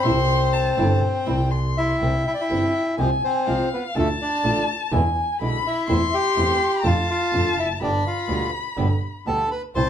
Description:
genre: tango.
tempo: 124 BPM.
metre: 4/4.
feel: rubato.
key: C major.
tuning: A4 = 440 Hz.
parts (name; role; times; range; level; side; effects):
bandoneon; melody; 0.0-9.9 s; A3 to C6; -23 LUFS; left 1 dB; none.
warm violin; second line; 0.0-9.9 s; F5 to C6; -26 LUFS; left 3 dB; none.
flamenco guitar; accompaniment; 0.0-9.8 s; B2 to G4; -26 LUFS; right 1 dB; none.
warm double bass; bass; 0.0-9.9 s; F1 to F2; -24 LUFS; right 1 dB; none.
room: wet studio reverb, RT60 0.6 s.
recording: band playing live in one room.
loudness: -19 LUFS.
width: side -9 dB against mid.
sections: 0.0-2.0 A section; 2.0-9.9 B section.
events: none.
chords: 0.0 C; 3.0 Fm/C; 4.0 Dm; 4.9 E7; 5.9 Am/E; 6.8 Dm/F; 7.8 G.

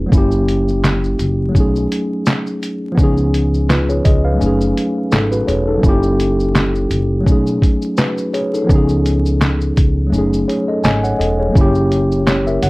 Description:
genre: lo-fi hip hop.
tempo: 84 BPM.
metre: 4/4.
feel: swing 56% on 16ths.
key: F# dorian.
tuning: A4 = 440 Hz.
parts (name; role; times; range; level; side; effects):
mellow tine electric piano; accompaniment; 0.0-12.7 s; E#3 to G#5; -16 LUFS; equal; medium stereo tremolo, cassette tape.
upright bass; bass; 0.0-12.7 s; E1 to C#2; -18 LUFS; equal; none.
lo-fi sampler-style drum kit; drums; 0.1-12.7 s; handclaps, hi-hat, kick drum, shaker, snare drum; -15 LUFS; equal; vintage 12-bit sampler grit.
room: moderate studio reverb, RT60 0.5 s.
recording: vinyl crackle.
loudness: -13 LUFS.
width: side -23 dB against mid.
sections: 0.0-12.7 A section.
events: none.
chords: 0.1 F#7b9; 1.5 B13; 3.0 C#9; 4.4 F#m69; 5.8 F#7b9; 7.3 B13; 8.7 C#9; 10.1 F#m69; 11.5 F#7b9.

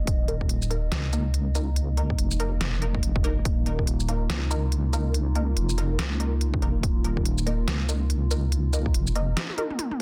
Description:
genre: deep dubstep.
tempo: 142 BPM.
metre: 4/4.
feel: swing 60% on 16ths, half-time.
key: unclear.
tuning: A4 = 436 Hz.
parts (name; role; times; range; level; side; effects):
dark analog pad; sustained chords; 0.0-10.0 s; Bb3 to Eb5; -38 LUFS; equal; chorus, phaser.
deep soft wobble bass; bass; 0.0-9.4 s; Eb1 to Db2; -27 LUFS; equal; chorus.
dubstep drum kit; drums; 0.1-10.0 s; hi-hat, shaker, snare drum, toms; -33 LUFS; equal; none.
electronic kick drum; drums; 0.1-3.9, 6.5-8.9 s; none; -28 LUFS; equal; none.
filtered dub chord stab; stabs; 0.3-9.8 s; Bb3 to Bb4; -37 LUFS; equal; phaser, analog chorus, dub echo.
room: digital ambience.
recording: dense, heavily limited modern master.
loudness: -26 LUFS.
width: mono.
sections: 0.0-10.0 A section.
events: break 9.4-10.0; drum fill 9.4-10.0.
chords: 0.0 Eb5.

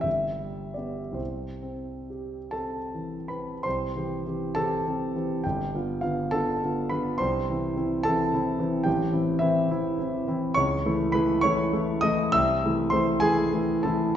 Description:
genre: classical, romantic character piece for solo piano.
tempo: 43-74 BPM (dotted quarters).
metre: 6/8.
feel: rubato.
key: C major.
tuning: A4 = 441 Hz.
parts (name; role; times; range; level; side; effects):
warm concert grand piano; solo; 0.0-14.2 s; G1 to E6; -24 LUFS; equal; none.
room: wet recital hall reverb, RT60 1.4 s.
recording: heard from further back in the room, nothing above 7.7 kHz.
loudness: -24 LUFS.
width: side -9 dB against mid.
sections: 0.0-3.7 A section; 3.7-14.2 B section.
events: none.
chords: 0.1 G; 1.2 C; 5.4 G7; 7.2 C; 8.9 Am7; 10.6 A/C#; 12.3 Am/C.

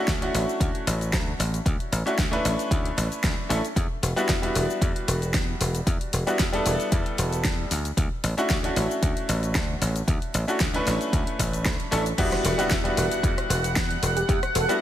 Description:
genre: nu-disco, nu disco.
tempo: 114 BPM.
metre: 4/4.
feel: swing 53% on 16ths.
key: E dorian.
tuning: A4 = 442 Hz.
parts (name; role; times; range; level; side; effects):
bright concert grand piano; accompaniment; 0.0-14.8 s; G3 to B4; -28 LUFS; equal; ping-pong delay.
dry thumbed slap bass; bass; 0.1-14.7 s; E1 to E2; -27 LUFS; equal; none.
electronic kick drum; drums; 0.1-14.4 s; none; -26 LUFS; equal; studio reverb.
pop drum kit; drums; 0.1-14.8 s; crash cymbal, hi-hat, rim click, shaker, snare drum; -30 LUFS; left 1 dB; studio reverb.
lush unison pad; sustained chords; 12.2-14.8 s; F#5; -29 LUFS; right 2 dB; chorus, vintage 12-bit sampler grit, sidechain pumping.
impact; sound effects; 12.2-14.3 s; none; -38 LUFS; equal; none.
wide unison lead; melody; 14.2-14.8 s; G4 to A4; -27 LUFS; equal; none.
room: light reverb.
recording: none.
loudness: -22 LUFS.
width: side -12 dB against mid.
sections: 0.0-12.2 A section; 12.2-14.8 B section.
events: drop 12.2-14.8; impact 12.2-14.3.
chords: 0.0 Dmaj7; 3.8 Em9; 7.7 Dmaj7; 12.2 Em9.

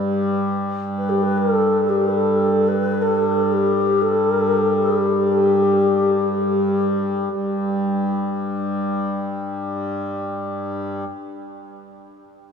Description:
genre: world meditative, free-time meditation music.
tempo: free time.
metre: none.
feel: none.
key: G major pentatonic.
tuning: A4 = 443 Hz.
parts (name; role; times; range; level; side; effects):
hand-pumped harmonium; drone; 0.0-11.0 s; G2 to G3; -22 LUFS; equal; none.
mellow hollow xiao; melody; 1.0-7.0 s; G4 to B4; -19 LUFS; left 1 dB; diffuse ambient delay.
room: wet huge ambient reverb, RT60 6.4 s.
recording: studio reverb.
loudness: -18 LUFS.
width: side -6 dB against mid.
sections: 0.0-7.3 A section; 7.3-11.4 B section.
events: none.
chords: none.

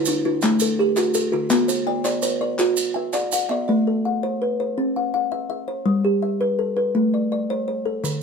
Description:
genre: southern african traditional, mbira-style interlocking cycle.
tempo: 110 BPM (dotted quarters).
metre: 12/8.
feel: straight.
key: A equiheptatonic.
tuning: A4 = 441 Hz.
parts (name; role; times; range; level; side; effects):
buzzing kalimba; arpeggios; 0.0-4.0 s; D3 to G5+29c; -25 LUFS; right 6 dB; none.
kalimba; arpeggios; 0.0-8.2 s; D3 to G5+29c; -20 LUFS; left 2 dB; none.
maracas; percussion; 0.1-3.5, 8.0-8.2 s; none; -28 LUFS; right 5 dB; none.
group handclap; percussion; 0.4-3.6 s; none; -30 LUFS; left 2 dB; none.
room: moderate studio reverb, RT60 0.8 s.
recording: band playing live in one room.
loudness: -19 LUFS.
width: side -5 dB against mid.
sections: 0.0-3.7 A section; 3.7-8.2 A section.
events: none.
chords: 0.0 D; 3.7 Am; 4.8 C; 5.9 G; 7.0 Am.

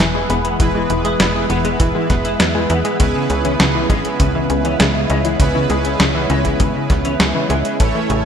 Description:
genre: synthwave.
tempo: 100 BPM.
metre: 4/4.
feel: straight.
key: unclear.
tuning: A4 = 441 Hz.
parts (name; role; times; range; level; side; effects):
phased analog pad; sustained chords; 0.0-8.2 s; C#3 to B4; -24 LUFS; equal; phaser, chorus, sidechain pumping.
analog pluck; arpeggios; 0.0-8.2 s; C#3 to A4; -22 LUFS; left 2 dB; chorus, ping-pong delay.
semi-hollow electric guitar; riff; 0.0-8.1 s; C#3 to E4; -24 LUFS; left 2 dB; ensemble chorus, ping-pong delay.
analog synth brass; stabs; 0.0-8.2 s; G#3 to C#5; -22 LUFS; right 2 dB; chorus, ping-pong delay.
tight sequencer bass; bass; 0.0-8.2 s; E1 to E2; -21 LUFS; equal; none.
detuned 8-bit digital drum machine; drums; 0.0-8.2 s; hi-hat, snare drum; -20 LUFS; equal; gated reverb.
kick drum; drums; 0.6-7.9 s; none; -18 LUFS; equal; none.
room: moderate lush hall reverb, RT60 1.9 s.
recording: bright 1980s-style digital production.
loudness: -14 LUFS.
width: side -8 dB against mid.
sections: 0.0-8.2 A section.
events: none.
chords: 0.0 E; 3.0 C#m7.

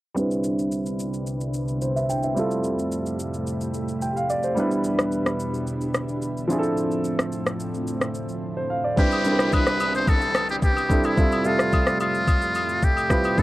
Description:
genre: amapiano.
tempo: 109 BPM.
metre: 4/4.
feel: straight.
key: unclear.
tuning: A4 = 442 Hz.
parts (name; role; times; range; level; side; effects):
warm grand piano; accompaniment; 0.1-13.4 s; F3 to G5; -25 LUFS; right 1 dB; low-pass filter.
string machine, cellos; sustained chords; 0.2-13.4 s; C2 to E5; -30 LUFS; equal; ensemble chorus, low-pass filter.
smooth R&B drum kit; drums; 0.2-13.4 s; kick drum, rim click, shaker; -23 LUFS; equal; cassette tape.
trumpet with metal mute; melody; 9.0-13.4 s; E4 to C5; -24 LUFS; equal; cassette tape.
downlifter; sound effects; 9.0-13.4 s; none; -35 LUFS; left 1 dB; none.
agogo bells; percussion; 9.1-13.4 s; none; -32 LUFS; left 4 dB; none.
room: light reverb.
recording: home recording on cassette.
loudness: -21 LUFS.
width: side -17 dB against mid.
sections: 0.2-9.0 A section; 9.0-13.4 B section.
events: filter sweep 0.2-9.0; drums muted 8.4-9.0.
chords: 0.2 Cmaj9; 2.4 Fmaj9; 4.6 Em7; 6.5 Dm9; 9.0 Cmaj9; 11.2 Fmaj9.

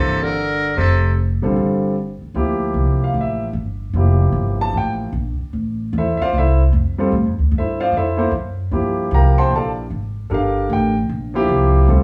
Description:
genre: jazz.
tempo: 151 BPM.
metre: 4/4.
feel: swing 64% on 8ths.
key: D minor.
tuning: A4 = 443 Hz.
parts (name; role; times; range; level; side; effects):
trumpet with metal mute; melody; 0.0-1.1 s; A4 to Bb4; -24 LUFS; equal; none.
warm tenor saxophone; second line; 0.0-1.1 s; C3 to D3; -24 LUFS; equal; none.
warm grand piano; accompaniment; 0.0-12.0 s; D3 to C6; -22 LUFS; equal; none.
upright bass; bass; 0.0-12.0 s; F1 to A2; -20 LUFS; equal; none.
room: moderate studio reverb, RT60 0.7 s.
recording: band playing live in one room, small room ambience.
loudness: -19 LUFS.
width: mono.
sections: 0.0-2.4 A section; 2.4-12.0 B section.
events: none.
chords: 0.0 C13sus4; 2.4 Dm11 (rootless); 8.7 Gm11.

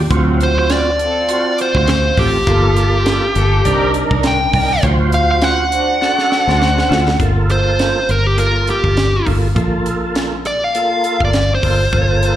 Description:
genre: straight-eighth soul blues.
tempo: 102 BPM.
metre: 4/4.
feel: swing 56% on 16ths.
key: G minor.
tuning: A4 = 439 Hz.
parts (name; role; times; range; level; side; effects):
percussive tonewheel organ; accompaniment; 0.0-12.4 s; Bb3 to C5; -21 LUFS; right 3 dB; overdrive, chorus vibrato, slow rotary speaker, slapback echo.
fingered electric bass; bass; 0.0-12.4 s; G1 to D2; -16 LUFS; equal; none.
muted studio string section; sustained chords; 0.1-6.8 s; F#3 to D5; -24 LUFS; left 2 dB; none.
tight funk drum kit; drums; 0.1-12.4 s; hi-hat, kick drum, snare drum; -20 LUFS; equal; none.
dark smooth lead guitar; melody; 0.4-12.4 s; G4 to G5; -16 LUFS; equal; overdrive, slapback echo.
room: light reverb, studio reverb.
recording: live gig heard through the venue's PA, recital hall reverb.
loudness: -12 LUFS.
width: side -12 dB against mid.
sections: 0.0-7.2 A section; 7.2-12.4 B section.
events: lead electric guitar solo 0.0-7.2; drum fill 6.0-7.2.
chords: 0.1 D7#9; 2.5 Gm9; 3.7 Cm9; 4.8 D7#9; 7.2 Gm9.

